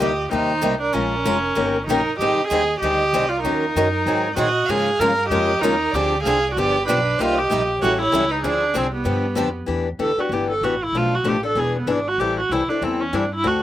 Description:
acoustic string swing (jazz manouche); 192 BPM; 4/4; swing 58% on 8ths; C minor, E minor from 9.7 s; A4 = 440 Hz
rich viola; melody; 0.0-13.6 s; B3 to Bb4; -21 LUFS; right 1 dB
warm violin; second line; 0.0-9.5 s; G4 to F5; -28 LUFS; right 5 dB
picked old ladder-braced acoustic guitar; accompaniment; 0.0-13.6 s; B2 to Bb4; -24 LUFS; left 5 dB; slapback echo
picked old ladder-braced acoustic guitar; accompaniment; 0.0-9.5 s; C3 to Bb4; -27 LUFS; right 5 dB; slapback echo
upright bass; bass; 0.0-13.6 s; E1 to Bb2; -28 LUFS; equal
little or no reverb; recorded outdoors, with no room sound; -18 LUFS; side -12 dB against mid
0.0-9.7 A section; 9.7-13.6 B section
viola solo 9.7-13.6
0.0 Cm7; 0.9 Bbm7; 1.6 Eb7; 2.2 Abmaj7; 3.4 Ebm7; 4.1 Ab7; 4.7 Db69; 5.9 Dm7b5; 6.6 G7; 7.2 Cm7; 7.8 A7; 8.4 Dm7b5; 9.1 G7; 9.7 Em7; 10.9 Bm7b5; 11.6 E7; 12.2 Am7

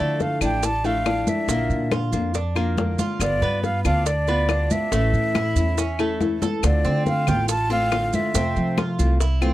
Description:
latin, Cuban son and guajira; 140 BPM; 4/4; straight; D minor; A4 = 439 Hz
breathy concert flute; melody; 0.0-8.8 s; D5 to A5; -24 LUFS; right 1 dB
nylon-string guitar; accompaniment; 0.0-9.5 s; C3 to F4; -27 LUFS; left 4 dB
Cuban tres; arpeggios; 0.0-9.5 s; A3 to A4; -30 LUFS; right 5 dB
upright bass; bass; 0.0-9.5 s; G1 to F3; -23 LUFS; right 1 dB
bongos; percussion; 0.2-9.5 s; -30 LUFS; left 7 dB
congas; percussion; 0.2-9.5 s; -27 LUFS; left 1 dB
maracas; percussion; 0.2-9.5 s; -33 LUFS; right 12 dB
claves; percussion; 0.4-9.5 s; -31 LUFS; left 16 dB
little or no reverb; dry, close 1970s-style studio recording; -19 LUFS; side -15 dB against mid
0.0-6.6 A section; 6.6-9.5 A section
drum fill 6.2-6.6
0.0 Dmadd9; 1.5 Bb; 3.2 G7; 4.9 A; 6.6 Dm7; 8.3 Fmaj7

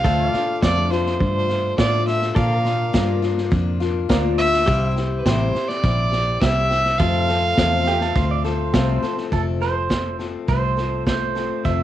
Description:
honky-tonk and classic country; 104 BPM; 4/4; straight; F major; A4 = 440 Hz
rich fiddle; melody; 0.0-8.7 s; B4 to F5; -22 LUFS; right 1 dB; cassette tape
picked steel-string acoustic guitar; accompaniment; 0.0-11.8 s; F2 to A4; -25 LUFS; left 9 dB; cassette tape
pedal steel guitar; sustained chords; 0.0-9.3 s; G4 to F5; -32 LUFS; equal; cassette tape
vintage muted fingered electric bass; bass; 0.0-11.8 s; F1 to Bb2; -22 LUFS; right 1 dB
vintage drum kit; drums; 0.0-11.8 s; hi-hat, kick drum, snare drum; -24 LUFS; right 1 dB; cassette tape
dark upright piano; accompaniment; 0.6-9.1 s; G4 to F5; -30 LUFS; right 10 dB; cassette tape
pedal steel guitar; second line; 7.9-11.8 s; G4 to E5; -25 LUFS; right 8 dB; cassette tape
light reverb; home recording on cassette; -18 LUFS; side -12 dB against mid
0.0-9.3 A section; 9.3-11.8 B section
pedal steel guitar solo 9.3-11.8
0.0 Dm; 2.4 Bb; 4.7 C; 7.0 F

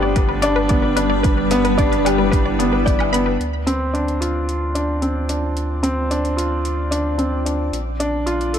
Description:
piano and strings electronica; 111 BPM; 4/4; straight; D minor; A4 = 439 Hz
granular cloud pad; sustained chords; 0.0-8.6 s; G3 to D5; -24 LUFS; left 1 dB; built-in reverb, sidechain pumping
wide unison pluck; arpeggios; 0.0-3.3 s; B4 to B5; -25 LUFS; left 2 dB; vintage 12-bit sampler grit, sidechain pumping, digital delay
felt-muted upright piano; riff; 0.0-8.6 s; B3 to D5; -20 LUFS; equal; digital delay
warm sub bass; bass; 0.0-8.6 s; G1 to D2; -24 LUFS; equal; sidechain pumping
electronic hi-hat and woodblock; drums; 0.2-8.6 s; -29 LUFS; equal; overdrive
electronic kick drum; drums; 0.2-3.0 s; -19 LUFS; equal; overdrive
light reverb; -17 LUFS; side -9 dB against mid
0.0-3.4 A section; 3.4-8.6 B section
0.0 G; 3.4 Dm7; 7.7 Bbmaj7

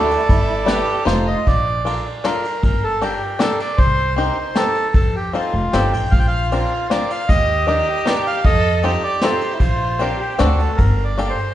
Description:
musette waltz; 155 BPM; 3/4; straight; Bb major; A4 = 440 Hz
bandoneon; melody; 0.0-11.5 s; F4 to G5; -21 LUFS; right 1 dB
clear violin; second line; 0.0-1.5, 6.1-10.8 s; E4 to A4; -26 LUFS; right 2 dB
bluegrass banjo; accompaniment; 0.0-11.4 s; Bb3 to C5; -23 LUFS; left 2 dB
upright bass; bass; 0.0-11.3 s; F1 to F2; -21 LUFS; equal
vintage brush drum kit; drums; 0.1-11.3 s; kick drum, ride cymbal, snare drum; -21 LUFS; equal
moderate recital hall reverb, RT60 1.4 s; recorded in a church or concert hall, nothing above 10.5 kHz; -15 LUFS; side -12 dB against mid
0.0-1.5 A section; 1.5-10.8 B section
0.3 G6; 1.1 F7; 1.5 Bbmaj7; 2.6 Gmadd9; 3.8 Cm7; 4.9 F7; 6.1 Bbadd9; 7.3 Ebmaj7; 8.4 F7; 9.6 Bbadd9; 10.4 D7; 10.8 Gmadd9

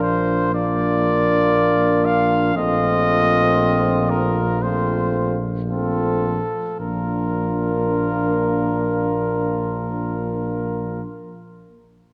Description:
classical, brass quintet; 53-60 BPM; 4/4; rubato; Bb major; A4 = 439 Hz
warm trumpet; melody; 0.0-11.0 s; A4 to F5; -25 LUFS; equal
warm trumpet; second line; 0.0-11.0 s; F4; -30 LUFS; equal
bright trombone; accompaniment; 0.0-11.0 s; A3 to Bb3; -28 LUFS; equal
clear French horn; accompaniment; 0.0-11.0 s; C4 to D4; -28 LUFS; equal
mellow tuba; bass; 0.0-11.0 s; Bb1; -26 LUFS; equal
wet concert hall reverb, RT60 2.3 s; worn, warbling old tape, cassette tape, warbly pitch drift; -20 LUFS; mono
0.0-6.8 A section; 6.8-11.1 B section
slowing down 0.0-6.8
0.0 Bb; 2.6 F7/Bb; 6.8 Bb

